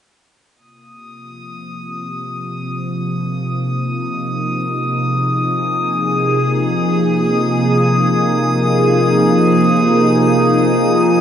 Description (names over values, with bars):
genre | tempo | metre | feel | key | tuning
ambient | free time | none | none | unclear | A4 = 439 Hz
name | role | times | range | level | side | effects
evolving wavetable pad | sustained chords | 1.9-11.2 s | C3 to Ab4 | -16 LUFS | equal | phaser, built-in reverb
analog drone | drone | 0.9-11.2 s | Bb3 to F4 | -21 LUFS | right 1 dB | chorus
drifting glass-harmonics texture | texture | 1.0-11.2 s | Eb6 | -21 LUFS | left 2 dB | chorus, built-in reverb
room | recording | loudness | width
wet cathedral reverb, RT60 5.9 s | in a vast, echoing space, nothing above 10.6 kHz | -13 LUFS | side -8 dB against mid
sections
0.6-11.2 A section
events
fade-in on ambient pad 0.6-11.2; fade-in on synth drone 0.6-11.2; fade-in on synth texture 0.6-11.2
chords
0.6 Ab6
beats
free time